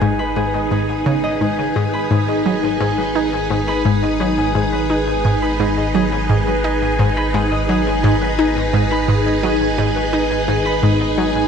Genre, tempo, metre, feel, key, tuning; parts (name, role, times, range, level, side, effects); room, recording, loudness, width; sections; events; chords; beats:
ambient, sequencer-driven space music; 86 BPM; 4/4; straight; G# minor; A4 = 440 Hz
string machine, full ensemble; sustained chords; 0.0-11.5 s; D#4 to B4; -19 LUFS; equal; phaser, ensemble chorus
concert harp; arpeggios; 0.0-11.5 s; G#4 to B5; -23 LUFS; right 1 dB; auto-pan, ping-pong delay
analog pluck; riff; 0.0-11.3 s; G#2 to D#4; -19 LUFS; left 1 dB; chorus, ping-pong delay
round analog bass; bass; 0.0-11.5 s; G#1; -26 LUFS; equal
moderate plate reverb, RT60 2.6 s; cassette tape; -15 LUFS; side -7 dB against mid
0.0-11.5 A section
0.0 G#m
0.36 1.06 | 1.76 2.46 3.15 3.85 | 4.55 5.25 5.94 6.64 | 7.34 8.04 8.73 9.43 | 10.13 10.83